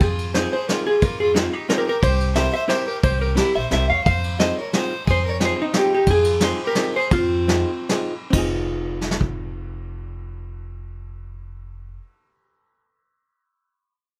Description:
musette waltz; 134-183 BPM; 3/4; swing 53% on 8ths, rubato; F minor; A4 = 440 Hz
vintage hollow-body jazz guitar; melody; 0.0-7.9 s; Eb4 to F5; -23 LUFS; equal
bright violin; second line; 0.0-7.9 s; C4 to Db5; -32 LUFS; equal
upright bass; bass; 0.0-12.0 s; F1 to F2; -28 LUFS; equal
vintage brush drum kit; drums; 0.0-9.3 s; crash cymbal, kick drum, ride cymbal, snare drum; -26 LUFS; equal
hollow-body jazz guitar; accompaniment; 0.4-12.0 s; C4 to Bb4; -29 LUFS; equal
moderate studio reverb, RT60 0.6 s; -20 LUFS; mono
0.0-8.3 A section; 8.3-11.0 B section
slowing down 6.1-8.3
0.0 Fm7; 2.0 C7; 4.1 Fm7

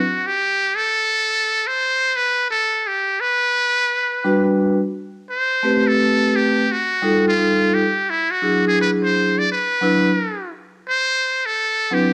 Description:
hip hop; 86 BPM; 4/4; swing 62% on 16ths; A4 = 439 Hz
trumpet with metal mute; melody; 0.0-12.1 s; E4 to D5; -21 LUFS; equal
vibraphone with medium mallets; accompaniment; 4.2-12.1 s; F#3 to B4; -20 LUFS; equal
moderate echo chamber reverb, RT60 1.4 s, small room reverb; worn, warbling old tape, cassette tape, warbly pitch drift; -19 LUFS; mono
0.0-12.1 A section
0.0 D7(no3) (rootless); 2.5 Gmaj7; 5.3 Am9; 7.4 F9; 8.1 E9; 10.9 D13

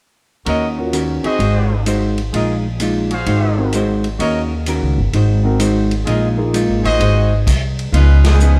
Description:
jazz, big band swing; 128 BPM; 4/4; swing 66% on 8ths; A4 = 440 Hz
vintage hollow-body jazz guitar; accompaniment; 0.5-8.6 s; Bb2 to C5; -22 LUFS; equal
clear trumpet section; stabs; 0.5-7.4 s; F4 to F5; -24 LUFS; equal
upright bass; bass; 0.5-8.6 s; G1 to Eb2; -18 LUFS; equal
swinging big-band drum kit; drums; 0.5-8.5 s; crash cymbal, hi-hat, kick drum, ride cymbal, snare drum; -28 LUFS; equal
warm grand piano; accompaniment; 0.8-7.0 s; Bb3 to Bb4; -25 LUFS; equal
bright saxophone section; melody; 7.9-8.6 s; F3 to Cb5; -24 LUFS; equal
light reverb; -16 LUFS; mono
0.5-7.9 A section
stop 7.5-7.9; band accent 8.2
0.5 Ebm7; 1.4 Ab7; 2.3 Bb7sus4; 3.3 Ab7; 4.2 Ebm7; 5.1 Ab7; 6.1 Bb7sus4; 7.0 Ab7; 7.9 Db9

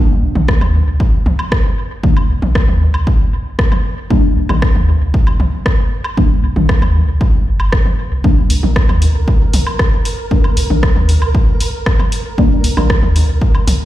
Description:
dub techno; 116 BPM; 4/4; straight; C minor; A4 = 442 Hz
deep mellow chord stab; stabs; 0.0-12.9 s; Eb3 to D4; -20 LUFS; left 1 dB; chorus, phaser, sidechain pumping, dub echo
warm sub bass; bass; 0.2-13.8 s; G1 to Eb2; -14 LUFS; equal; sidechain pumping
electronic toms and woodblock; percussion; 0.4-13.8 s; -24 LUFS; equal; overdrive, sidechain pumping on perc, sidechain pumping on toms, dub echo
electronic kick drum; drums; 0.5-13.5 s; -14 LUFS; equal
punchy analog drum machine; drums; 0.5-13.8 s; hi-hat, rim click; -22 LUFS; equal; dub echo
flickering grainy texture; texture; 8.5-13.8 s; Bb4; -26 LUFS; right 3 dB; built-in reverb, sidechain pumping
little or no reverb; played on a big sound system in a bare room, large studio reverb; -11 LUFS; side -14 dB against mid
0.0-13.8 A section
filter sweep on synth stab 0.0-13.8
0.0 Cm9

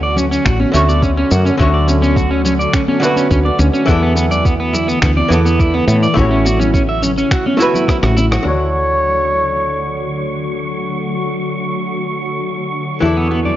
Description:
sunset chillout; 105 BPM; 4/4; straight; D major; A4 = 439 Hz
archtop guitar, miked and amplified; accompaniment; 0.0-13.6 s; D3 to C#6; -20 LUFS; equal; auto-pan, low-pass filter, tape echo
shimmering ambient pad; sustained chords; 0.0-13.6 s; C#3 to C#5; -23 LUFS; left 1 dB; chorus, built-in reverb
electric guitar at the edge of break-up; arpeggios; 0.0-8.4, 13.0-13.6 s; B3 to E5; -17 LUFS; right 1 dB; tape echo
woody fretless electric bass; bass; 0.0-13.6 s; A1 to A2; -16 LUFS; equal; tube saturation
electronic shaker, finger snaps and rim click; drums; 0.2-8.4 s; -22 LUFS; left 1 dB
congas; percussion; 0.2-8.4, 13.3-13.6 s; -24 LUFS; left 3 dB
electronic kick drum; drums; 0.5-8.0 s; -16 LUFS; equal
warm flugelhorn; melody; 8.5-10.4 s; C#5; -18 LUFS; equal; vintage 12-bit sampler grit, analog delay
wind-like tuned noise texture; texture; 8.5-13.6 s; C#6; -26 LUFS; right 2 dB; built-in reverb
light reverb; dry, gritty hardware recording, cassette tape, nothing above 7.5 kHz; -12 LUFS; side -13 dB against mid
0.0-8.5 A section; 8.5-13.6 B section
drum fill 7.9-8.5; band accent 8.3; filter sweep on hollow-body jazz guitar 8.5-13.6; filter sweep on ambient pad 8.5-13.6
0.0 Dmaj7; 3.9 E7sus4; 6.2 A6; 8.5 Dmaj7; 13.0 E7sus4

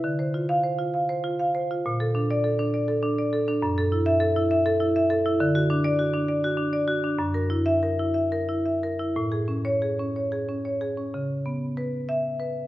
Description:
classical, contemporary piece for solo marimba; 59-68 BPM (dotted quarters); 6/8; rubato; A4 = 440 Hz
marimba with medium hard mallets; solo; 0.0-12.7 s; F#2 to F5; -22 LUFS; equal
moderate recital hall reverb, RT60 1.7 s; -22 LUFS; side -15 dB against mid
0.0-11.1 A section; 11.1-12.7 B section
0.0 Dm7; 1.8 A#maj7; 3.6 F#m7; 5.4 D; 7.2 F#7; 9.1 Amaj7; 11.1 C#m7

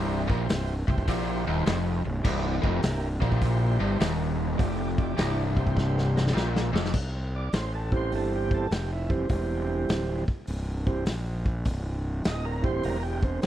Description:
blues rock power trio and southern rock; 102 BPM; 4/4; swing 66% on 8ths; C mixolydian; A4 = 441 Hz
tonewheel organ; sustained chords; 0.0-13.5 s; E3 to Bb5; -32 LUFS; right 4 dB; slow rotary speaker
overdriven electric guitar; riff; 0.0-6.9 s; C2 to Bb2; -28 LUFS; left 1 dB
fuzz fingered electric bass; bass; 0.0-13.5 s; C1 to C2; -29 LUFS; equal; overdrive
raw garage drum kit; drums; 0.3-13.5 s; crash cymbal, hi-hat, kick drum, snare drum; -30 LUFS; equal
little or no reverb; dry, close 1970s-style studio recording; -24 LUFS; side -12 dB against mid
0.0-6.9 A section; 6.9-13.5 B section
drum fill 5.8-6.9; tonewheel organ fill 5.8-6.9; tonewheel organ solo 6.9-13.5
0.0 C

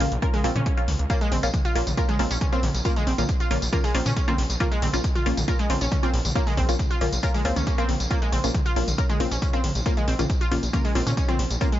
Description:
driving peak-time techno; 137 BPM; 4/4; straight; Bb minor; A4 = 440 Hz
filtered dub chord stab; stabs; 0.0-11.7 s; Bb3 to F4; -29 LUFS; left 2 dB; phaser, sidechain pumping, digital delay
gritty driven synth bass; bass; 0.0-11.6 s; Bb1 to Bb2; -26 LUFS; equal; sidechain pumping
techno drum kit; drums; 0.0-11.8 s; hi-hat, tambourine, toms; -30 LUFS; left 1 dB; sidechain pumping on hats, sidechain pumping on toms, sidechain pumping on perc
wide unison pluck; riff; 0.2-11.8 s; Ab3 to Bb4; -29 LUFS; right 1 dB; overdrive, sidechain pumping, digital delay
electronic kick drum; drums; 0.2-11.7 s; -25 LUFS; equal
swell; sound effects; 7.4-8.1 s; -37 LUFS; left 2 dB
digital ambience; nothing above 7.6 kHz; -21 LUFS; side -13 dB against mid
0.0-11.8 A section
swell 7.4-8.1
0.0 Bbm

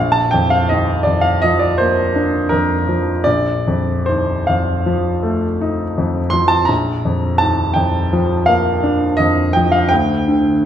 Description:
classical, romantic nocturne for solo piano; 47-57 BPM (dotted quarters); 9/8; rubato; Bb major; A4 = 443 Hz
clear grand piano; solo; 0.0-10.7 s; Bb1 to C6; -14 LUFS; equal
wet recital hall reverb, RT60 1.6 s; recorded in a church or concert hall; -14 LUFS; side -10 dB against mid
0.0-10.7 A section
0.0 Bb; 3.3 F7/Bb; 6.7 Bb; 9.9 N.C.

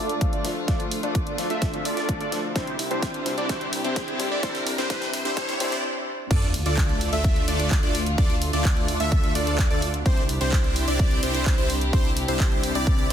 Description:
EDM, festival progressive house; 128 BPM; 4/4; straight; D minor; A4 = 439 Hz
warm chamber string section; sustained chords; 0.0-13.1 s; C3 to G4; -33 LUFS; equal; sidechain pumping
wide unison lead; arpeggios; 0.0-13.1 s; C5 to E5; -32 LUFS; equal; sidechain pumping, tape echo
supersaw chords; riff; 0.0-13.1 s; A3 to E5; -28 LUFS; equal; sidechain pumping, low-pass filter, tape echo
wide detuned saw bass; bass; 0.0-13.1 s; C2 to D2; -30 LUFS; equal; chorus, sidechain pumping, high-pass filter
riser and sub drop; sound effects; 1.3-8.2 s; -33 LUFS; equal
big-room dance drum kit; drums; 0.1-13.1 s; crash cymbal, handclaps, hi-hat, snare drum; -32 LUFS; right 1 dB; high-pass filter on hats, high-pass filter on snare, high-pass filter on cymbals
clear concert grand piano; accompaniment; 0.2-5.8 s; C3 to F4; -33 LUFS; left 4 dB; sidechain pumping, tape echo
electronic kick drum; drums; 0.2-13.0 s; -23 LUFS; equal
light reverb, digital ambience; dense, heavily limited modern master, high-pass filter; -21 LUFS; side -9 dB against mid
0.0-6.3 A section; 6.3-13.1 B section
build-up 0.0-6.3; drum fill 0.0-5.8; filter sweep on supersaw synth 0.0-6.3; filter sweep on analog synth lead 0.0-6.3; filter sweep 0.0-6.3; riser 1.3-5.8; stop 5.8-6.3; drop 6.3-13.1; impact 6.3-8.2
0.0 Dm; 2.6 Cadd9; 6.3 Dm; 10.1 Cadd9

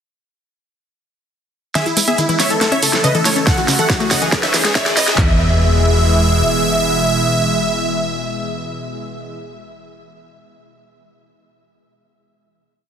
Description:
uplifting trance; 140 BPM; 4/4; straight; E major; A4 = 439 Hz
supersaw chords; melody; 1.8-9.4 s; E4 to F#5; -19 LUFS; right 1 dB; sidechain pumping, digital delay
analog pluck; second line; 1.8-9.9 s; E4 to F#5; -26 LUFS; left 1 dB; chorus, sidechain pumping, digital delay
lush unison pad; sustained chords; 2.2-9.4 s; B2 to E4; -22 LUFS; equal; chorus, phaser, sidechain pumping
analog pluck; arpeggios; 1.8-5.4 s; C#3 to C#4; -23 LUFS; left 3 dB; chorus, sidechain pumping, digital delay
big-room dance drum kit; drums; 1.8-5.2 s; hi-hat, snare drum; -20 LUFS; equal; overdrive, high-pass filter on snare, high-pass filter on hats
shekere; percussion; 1.8-5.2 s; -24 LUFS; right 5 dB
riser and impact; sound effects; 3.1-9.9 s; -26 LUFS; equal
solid FM bass; bass; 2.0-6.4 s; E1 to F#2; -17 LUFS; equal; sidechain pumping, high-pass filter
big-room dance drum kit; drums; 3.5-5.3 s; handclaps, kick drum, toms; -17 LUFS; equal; overdrive
light reverb; dense, heavily limited modern master, high-pass filter; -13 LUFS; side -8 dB against mid
1.8-5.2 build; 5.2-8.6 final chord
build-up 1.8-5.2; drum fill 1.8-5.2; filter sweep on synth arpeggio sound 1.8-5.2; riser 3.1-5.2
1.8 Emaj7; 2.6 A; 3.5 F#m7; 4.3 C#madd9; 5.2 E

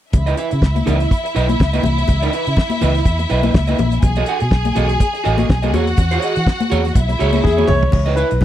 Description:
disco; 123 BPM; 4/4; swing 56% on 16ths; C# minor; A4 = 439 Hz
clear symphonic string section; second line; 0.1-7.9 s; E4 to G#5; -22 LUFS; left 1 dB
electric guitar at the edge of break-up; accompaniment; 0.1-8.3 s; E4 to F#5; -22 LUFS; right 6 dB
vintage muted fingered electric bass; bass; 0.1-8.4 s; A1 to E3; -18 LUFS; equal
damped 70s drum kit; drums; 0.1-8.4 s; crash cymbal, hi-hat, kick drum, snare drum, toms; -16 LUFS; equal
congas; percussion; 0.1-8.4 s; -23 LUFS; left 5 dB
warm concert grand piano; melody; 7.4-8.4 s; G#4 to C#5; -18 LUFS; left 2 dB
small room ambience; dry, close 1970s-style studio recording; -14 LUFS; side -12 dB against mid
0.1-7.9 A section
drum fill 7.4-7.9
0.1 C#m9; 4.0 B7; 5.7 E69; 7.9 C#m9

